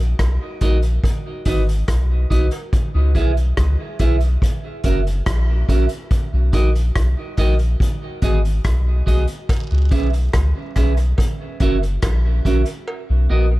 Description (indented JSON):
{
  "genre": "dub reggae",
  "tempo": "71 BPM",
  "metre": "4/4",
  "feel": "straight",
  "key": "C# dorian",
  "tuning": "A4 = 443 Hz",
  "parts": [
    { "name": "soft dub sub bass", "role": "bass", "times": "0.0-13.6 s", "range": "F#1 to C#2", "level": "-17 LUFS", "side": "equal", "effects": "none" },
    { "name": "vintage drum kit", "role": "drums", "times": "0.2-12.9 s", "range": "hi-hat, kick drum, rim click", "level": "-21 LUFS", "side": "equal", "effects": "none" },
    { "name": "cowbell and jawbone-type rattle", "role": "percussion", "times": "0.2-2.1, 9.5-13.1 s", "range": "none", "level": "-36 LUFS", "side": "right 2 dB", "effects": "dub echo" },
    { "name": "clean electric guitar", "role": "accompaniment", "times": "0.6-13.5 s", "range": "B3 to E5", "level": "-25 LUFS", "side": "right 3 dB", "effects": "dub echo" }
  ],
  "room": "studio ambience",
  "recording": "echo-heavy mix",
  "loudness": "-16 LUFS",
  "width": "side -18 dB against mid",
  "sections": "0.0-13.6 A section",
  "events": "part muted 2.7-9.5, 12.9-13.6",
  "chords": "0.0 Bmaj7; 1.0 G#m7; 2.7 C#m7; 4.4 F#7; 6.1 Bmaj7; 7.8 G#m7; 9.5 C#m7; 11.2 F#7; 12.9 Bmaj7",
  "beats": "0.19 1.03 1.88 | 2.72 3.57 4.41 5.26 | 6.11 6.95 7.80 8.64 | 9.49 10.34 11.18 12.03 | 12.87"
}